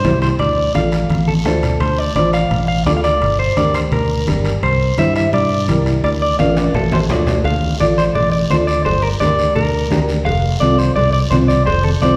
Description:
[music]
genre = latin, cumbia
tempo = 170 BPM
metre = 4/4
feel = straight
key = D minor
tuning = A4 = 440 Hz
[part]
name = electric guitar at the edge of break-up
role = melody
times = 0.0-12.2 s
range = A4 to F5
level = -20 LUFS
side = equal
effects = spring reverb
[part]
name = dark upright piano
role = accompaniment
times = 0.0-12.2 s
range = C4 to D5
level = -24 LUFS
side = equal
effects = none
[part]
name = fingered electric bass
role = bass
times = 0.0-12.2 s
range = F1 to G2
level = -20 LUFS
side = equal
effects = none
[part]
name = congas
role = percussion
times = 0.0-12.2 s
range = none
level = -24 LUFS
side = equal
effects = none
[part]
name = guiro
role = percussion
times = 0.0-12.2 s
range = none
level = -34 LUFS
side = equal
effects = none
[part]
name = timbales and cowbell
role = percussion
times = 0.0-12.2 s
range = none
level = -30 LUFS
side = equal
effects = none
[sound]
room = wet recital hall reverb, RT60 1.5 s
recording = recorded in a church or concert hall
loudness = -16 LUFS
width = mono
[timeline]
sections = 0.0-7.4 A section; 7.4-12.2 B section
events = drum fill 1.1-1.8, 6.4-7.4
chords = 0.4 Dm; 3.2 Gm; 4.6 C; 6.0 Dm; 8.9 Gm; 10.3 F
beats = 0.04 | 0.40 0.75 1.10 1.45 | 1.81 2.16 2.51 2.86 | 3.22 3.57 3.92 4.28 | 4.63 4.98 5.33 5.68 | 6.04 6.39 6.74 7.09 | 7.45 7.80 8.15 8.50 | 8.86 9.21 9.56 9.91 | 10.26 10.62 10.97 11.32 | 11.67 12.02

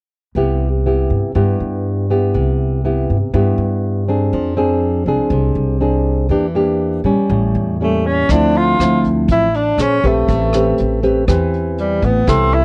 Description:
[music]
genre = bossa nova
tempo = 121 BPM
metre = 4/4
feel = straight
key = C major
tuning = A4 = 445 Hz
[part]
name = upright bass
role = bass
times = 0.3-12.6 s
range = A1 to Bb2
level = -20 LUFS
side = equal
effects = none
[part]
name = nylon-string guitar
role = accompaniment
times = 0.4-12.6 s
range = G2 to C5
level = -19 LUFS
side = equal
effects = none
[part]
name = breathy tenor saxophone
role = melody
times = 7.8-12.6 s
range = G3 to F4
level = -19 LUFS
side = equal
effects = none
[part]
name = vintage brush drum kit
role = drums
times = 8.3-12.6 s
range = hi-hat, kick drum, rim click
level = -24 LUFS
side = equal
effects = none
[sound]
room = little or no reverb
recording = dry, close 1970s-style studio recording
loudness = -16 LUFS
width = mono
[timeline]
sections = 0.3-8.3 A section; 8.3-12.6 B section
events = none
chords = 0.3 Cmaj7; 4.3 Fm6; 6.3 Em7b5; 7.3 A7b9; 8.3 Dm9; 9.8 Bbm9; 10.3 Am9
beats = | 0.35 0.85 1.34 1.84 | 2.34 2.83 3.33 3.83 | 4.33 4.82 5.32 5.82 | 6.31 6.81 7.30 7.80 | 8.30 8.79 9.29 9.79 | 10.28 10.78 11.28 11.77 | 12.27

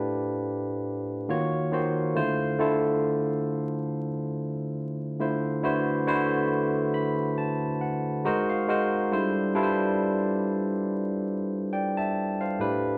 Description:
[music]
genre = R&B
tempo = 69 BPM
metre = 4/4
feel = swing 56% on 16ths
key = D dorian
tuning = A4 = 439 Hz
[part]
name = barky tine electric piano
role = solo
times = 0.0-13.0 s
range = A2 to B5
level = -27 LUFS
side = equal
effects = overdrive
[sound]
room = wet large studio reverb, RT60 1.3 s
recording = band playing live in one room, vinyl crackle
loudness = -27 LUFS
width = mono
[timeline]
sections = 0.0-13.0 A section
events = tine electric piano fill 6.5-9.1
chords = 0.0 A9sus4; 1.3 Ebm9; 2.2 Dm9; 5.6 D13; 8.2 G#9; 9.1 G13sus4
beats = 0.42 1.29 | 2.16 3.03 3.90 4.77 | 5.64 6.50 7.38 8.24 | 9.11 9.98 10.85 11.72 | 12.59

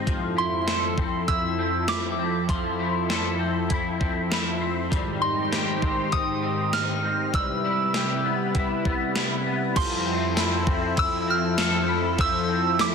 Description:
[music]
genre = dream pop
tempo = 99 BPM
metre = 4/4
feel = straight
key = F lydian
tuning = A4 = 440 Hz
[part]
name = lush unison pad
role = sustained chords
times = 0.0-12.9 s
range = F2 to C5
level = -26 LUFS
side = equal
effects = chorus
[part]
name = electric guitar at the edge of break-up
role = arpeggios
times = 0.0-12.9 s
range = F3 to A4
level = -29 LUFS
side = left 4 dB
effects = ensemble chorus, ping-pong delay
[part]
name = gated 80s digital drum machine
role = drums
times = 0.1-12.9 s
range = crash cymbal, hi-hat, kick drum, ride cymbal, snare drum, tambourine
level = -27 LUFS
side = equal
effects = gated reverb, gated reverb snare
[part]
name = soft synth bell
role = melody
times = 0.4-12.9 s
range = C6 to F6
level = -28 LUFS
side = right 2 dB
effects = chorus, phaser, ping-pong delay
[sound]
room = light reverb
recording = dense, heavily limited modern master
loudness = -22 LUFS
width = side -6 dB against mid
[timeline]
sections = 0.0-9.8 A section; 9.8-12.9 B section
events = none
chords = 0.1 Fmaj7; 4.9 Abmaj7; 7.3 Cmaj7; 9.8 Fmaj7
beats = | 0.07 0.67 1.28 1.89 | 2.49 3.10 3.70 4.31 | 4.92 5.52 6.13 6.74 | 7.34 7.95 8.55 9.16 | 9.77 10.37 10.98 11.58 | 12.19 12.79

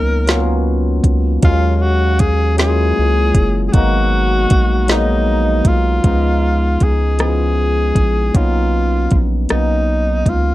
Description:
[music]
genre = slow six-eight R&B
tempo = 52 BPM (dotted quarters)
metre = 6/8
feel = straight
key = unclear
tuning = A4 = 442 Hz
[part]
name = breathy tenor saxophone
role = melody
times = 0.0-10.5 s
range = Eb4 to A#4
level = -19 LUFS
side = equal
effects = slapback echo
[part]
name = barky tine electric piano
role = accompaniment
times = 0.0-10.5 s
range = F3 to F5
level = -20 LUFS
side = left 2 dB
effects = overdrive, wide subtle chorus
[part]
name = round analog bass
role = bass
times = 0.0-10.5 s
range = Gb1 to Eb2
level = -16 LUFS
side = equal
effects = none
[part]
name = smooth R&B drum kit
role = drums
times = 0.3-10.4 s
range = hi-hat, kick drum, rim click, snare drum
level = -14 LUFS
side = equal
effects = none
[sound]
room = little or no reverb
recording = dark, warm production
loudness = -12 LUFS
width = side -16 dB against mid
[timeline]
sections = 0.0-6.0 A section; 6.0-10.5 B section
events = none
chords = 0.0 Bmaj9; 1.4 Ebm11; 3.7 Abm9; 6.0 Db7; 8.3 Bmaj9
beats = 0.27 | 1.43 2.58 | 3.73 4.89 | 6.04 7.19 | 8.35 9.50

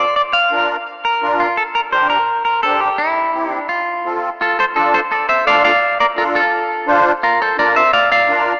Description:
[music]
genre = latin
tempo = 170 BPM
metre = 4/4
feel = straight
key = unclear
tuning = A4 = 439 Hz
[part]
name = clean electric guitar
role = melody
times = 0.0-8.6 s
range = E4 to F5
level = -16 LUFS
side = equal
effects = spring reverb
[part]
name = musette accordion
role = accompaniment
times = 0.0-8.5 s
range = C4 to C5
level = -21 LUFS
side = equal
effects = none
[sound]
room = moderate lush hall reverb, RT60 2.9 s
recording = rough home demo mix, small speaker sound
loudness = -15 LUFS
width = mono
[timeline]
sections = 0.0-4.4 A section; 4.4-8.6 B section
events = none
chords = 0.2 Bb; 1.6 Gm; 3.0 C; 3.7 F; 4.4 Dm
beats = | 0.16 0.51 0.87 1.22 | 1.57 1.93 2.28 2.64 | 2.99 3.34 3.70 4.05 | 4.40 4.76 5.11 5.46 | 5.82 6.17 6.52 6.87 | 7.23 7.58 7.93 8.29

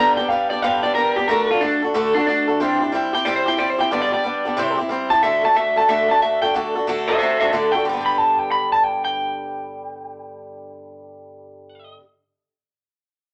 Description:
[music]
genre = rock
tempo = 183 BPM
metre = 4/4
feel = swing 64% on 8ths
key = G major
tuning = A4 = 442 Hz
[part]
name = electric guitar through a small old amp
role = melody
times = 0.0-11.9 s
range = D4 to B5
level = -21 LUFS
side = equal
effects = none
[part]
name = picked swing-style acoustic guitar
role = accompaniment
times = 0.0-12.1 s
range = G2 to A4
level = -24 LUFS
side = equal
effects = none
[sound]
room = moderate club reverb, RT60 0.9 s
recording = none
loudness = -19 LUFS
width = mono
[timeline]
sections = 0.0-6.5 A section; 6.5-7.9 B section; 7.9-10.5 C section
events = none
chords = 0.0 G; 1.3 D; 2.6 C; 3.9 G; 4.6 C; 5.2 D; 7.9 G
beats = 0.30 0.63 0.95 | 1.28 1.61 1.94 2.27 | 2.60 2.93 3.25 3.58 | 3.91 4.24 4.57 4.90 | 5.22 5.55 5.88 6.21 | 6.54 6.87 7.20 7.53 | 7.85 8.18 8.51 8.84 | 9.17 9.50 9.83 10.15

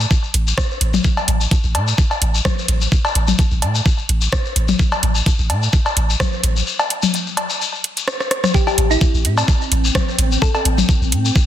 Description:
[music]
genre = minimal techno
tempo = 128 BPM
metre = 4/4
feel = swing 55% on 16ths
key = A minor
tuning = A4 = 440 Hz
[part]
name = punchy sub bass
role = bass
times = 0.0-11.3 s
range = A1 to A2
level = -17 LUFS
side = equal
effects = sidechain pumping
[part]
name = shekere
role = percussion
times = 0.0-11.5 s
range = none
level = -24 LUFS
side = left 7 dB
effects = none
[part]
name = electronic kick drum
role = drums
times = 0.1-11.5 s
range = none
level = -16 LUFS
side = equal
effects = overdrive
[part]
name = garage drum kit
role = drums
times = 0.3-11.2 s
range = hi-hat, rim click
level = -21 LUFS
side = right 2 dB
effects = overdrive
[part]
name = electronic toms and cowbell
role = percussion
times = 0.9-10.9 s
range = none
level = -22 LUFS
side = left 3 dB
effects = tape echo
[part]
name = thumb-piano-like synth pluck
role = melody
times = 8.5-10.6 s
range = E4 to A4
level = -23 LUFS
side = equal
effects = chorus, phaser, tape echo
[part]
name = swarming drone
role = texture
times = 9.0-11.5 s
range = C4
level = -26 LUFS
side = equal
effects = built-in reverb, sidechain pumping
[sound]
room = digital ambience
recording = dense, heavily limited modern master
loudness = -15 LUFS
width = side -11 dB against mid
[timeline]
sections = 0.0-8.5 A section; 8.5-11.5 B section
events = break 6.7-8.5; drum fill 8.2-8.5; drop 8.5-11.5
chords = 0.0 N.C.; 8.5 Am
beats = 0.11 0.58 | 1.04 1.51 1.98 2.45 | 2.92 3.39 3.86 4.33 | 4.79 5.26 5.73 6.20 | 6.67 7.14 7.61 8.08 | 8.54 9.01 9.48 9.95 | 10.42 10.89 11.36

